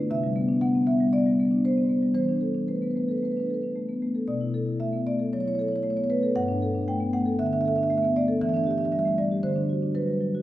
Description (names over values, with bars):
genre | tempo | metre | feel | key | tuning
classical, contemporary piece for solo marimba | 116 BPM | 4/4 | straight | unclear | A4 = 442 Hz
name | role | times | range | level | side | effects
marimba with soft mallets | solo | 0.0-10.4 s | G2 to G5 | -23 LUFS | equal | none
room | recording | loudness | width
wet recital hall reverb, RT60 1.7 s | heard from further back in the room | -23 LUFS | side -14 dB against mid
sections
0.0-10.4 A section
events
none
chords
0.1 Cmaj9; 2.2 E7sus4; 4.3 Bm11; 6.4 Gadd9; 8.4 Em7; 9.4 D7